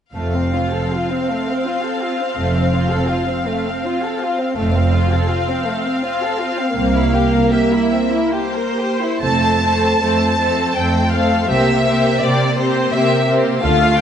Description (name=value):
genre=classical, slow romantic movement for string orchestra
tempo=61-88 BPM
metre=3/4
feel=rubato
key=F major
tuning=A4 = 440 Hz
part: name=clear symphonic violin section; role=melody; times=0.1-14.0 s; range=C5 to A5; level=-20 LUFS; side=left 2 dB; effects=none
part: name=warm symphonic violin section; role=second line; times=0.1-14.0 s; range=A3 to C5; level=-21 LUFS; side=left 2 dB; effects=none
part: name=clear symphonic viola section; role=accompaniment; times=0.1-14.0 s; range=A3 to F4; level=-20 LUFS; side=right 2 dB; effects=none
part: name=rich studio double bass section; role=bass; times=0.1-14.0 s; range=F1 to D2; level=-22 LUFS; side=right 2 dB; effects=none
part: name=rich symphonic cello section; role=bass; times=0.1-14.0 s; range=C2 to D3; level=-22 LUFS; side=right 2 dB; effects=none
room=moderate scoring stage reverb, RT60 1.9 s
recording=nothing above 10.7 kHz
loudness=-15 LUFS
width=side -8 dB against mid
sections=0.1-9.2 A section; 9.2-14.0 B section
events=none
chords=0.1 F; 6.7 C7; 9.2 F; 11.5 C7